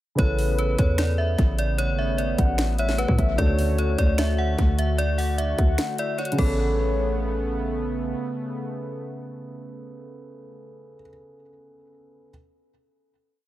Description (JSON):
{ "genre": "hip hop, trap", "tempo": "150 BPM", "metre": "4/4", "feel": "half-time", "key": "A major", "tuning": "A4 = 440 Hz", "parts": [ { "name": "metallic FM bell", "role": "melody", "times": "0.2-7.7 s", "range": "A4 to F#5", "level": "-29 LUFS", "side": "equal", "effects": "chorus, analog delay" }, { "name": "soft octave-layered synth lead", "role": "second line", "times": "0.2-7.7 s", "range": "B4 to F#5", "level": "-32 LUFS", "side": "left 3 dB", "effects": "chorus, analog delay" }, { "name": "dark grand piano", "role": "accompaniment", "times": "0.2-12.3 s", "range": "C#3 to A4", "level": "-32 LUFS", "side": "right 1 dB", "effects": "analog delay" }, { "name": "warm analog pad", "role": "sustained chords", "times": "0.2-10.5 s", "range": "C#3 to F#4", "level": "-32 LUFS", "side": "equal", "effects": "chorus" }, { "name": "hard-hitting 808-style bass", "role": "bass", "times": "0.2-8.1 s", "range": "G#1 to A2", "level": "-24 LUFS", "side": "equal", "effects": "none" }, { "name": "trap drum kit", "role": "drums", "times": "0.2-6.5 s", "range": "crash cymbal, finger snaps, hi-hat, kick drum, snare drum", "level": "-24 LUFS", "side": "equal", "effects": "analog delay" } ], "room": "little or no reverb", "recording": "echo-heavy mix", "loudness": "-21 LUFS", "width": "side -15 dB against mid", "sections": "0.2-6.6 hook; 6.6-9.8 final hit", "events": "kick muted 5.8-6.6", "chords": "0.2 Aadd9; 3.4 D; 6.4 Aadd9" }